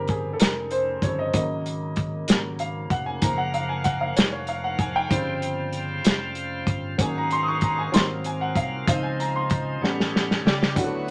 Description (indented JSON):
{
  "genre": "slow gospel",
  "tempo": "64 BPM (dotted quarters)",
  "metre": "6/8",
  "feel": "straight",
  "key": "unclear",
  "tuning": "A4 = 442 Hz",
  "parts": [
    { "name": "warm upright piano", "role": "accompaniment", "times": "0.0-11.1 s", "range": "Db3 to Eb6", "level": "-29 LUFS", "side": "equal", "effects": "none" },
    { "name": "fingered electric bass", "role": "bass", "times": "0.0-11.1 s", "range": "F1 to D2", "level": "-34 LUFS", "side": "equal", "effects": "none" },
    { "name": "warm soul drum kit", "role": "drums", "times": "0.1-11.1 s", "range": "hi-hat, kick drum, snare drum", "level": "-25 LUFS", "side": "equal", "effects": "none" },
    { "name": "bright tonewheel organ", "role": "sustained chords", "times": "3.2-11.1 s", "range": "Db3 to G5", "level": "-35 LUFS", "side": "equal", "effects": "slow rotary speaker" },
    { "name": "warm saxophone section", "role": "melody", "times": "10.4-11.1 s", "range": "A3 to G4", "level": "-32 LUFS", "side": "equal", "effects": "none" },
    { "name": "breathy tenor saxophone", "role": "melody", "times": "10.5-11.1 s", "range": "F#3 to G3", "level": "-34 LUFS", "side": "equal", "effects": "none" }
  ],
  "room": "wet studio reverb, RT60 0.5 s",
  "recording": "none",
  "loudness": "-25 LUFS",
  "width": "mono",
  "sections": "0.0-10.8 A section",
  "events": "upright piano solo 0.0-10.8; drum fill 9.8-10.8",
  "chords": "0.0 Bbm13/F; 1.3 Ab7sus4; 2.3 Ab9sus4; 3.2 Gbmaj7; 5.1 Fsus2; 7.0 Ab7sus4; 7.9 Ab13; 8.9 Dbmaj9; 9.8 A9"
}